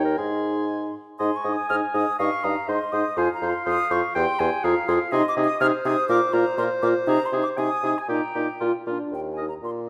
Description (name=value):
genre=quick classical-period movement for wind quintet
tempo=121 BPM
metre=2/4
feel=straight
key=Ab major, Eb major from 5.1 s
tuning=A4 = 440 Hz
part: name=hollow concert flute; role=melody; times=0.0-9.7 s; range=G5 to F6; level=-30 LUFS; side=equal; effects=none
part: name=clear oboe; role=second line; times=0.0-9.5 s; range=F4 to Ab5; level=-33 LUFS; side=equal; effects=none
part: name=warm French horn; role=accompaniment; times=0.0-9.5 s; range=D4 to G4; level=-30 LUFS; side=equal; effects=none
part: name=warm clarinet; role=accompaniment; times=0.0-9.5 s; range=Ab4 to Ab5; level=-30 LUFS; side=equal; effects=none
part: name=warm bassoon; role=bass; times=0.0-9.9 s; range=Eb2 to C3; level=-29 LUFS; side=equal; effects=none
room=moderate recital hall reverb, RT60 1.6 s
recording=none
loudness=-23 LUFS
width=mono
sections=0.0-1.2 A section; 1.2-9.1 A section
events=none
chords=0.2 Ab; 2.2 Eb/G; 2.7 Ab; 3.2 F5; 4.2 C/E; 4.6 Fm; 5.1 Ab/C; 6.1 Bb5; 7.1 Ab/C; 8.1 Eb/Bb; 8.6 Bb; 9.1 Eb5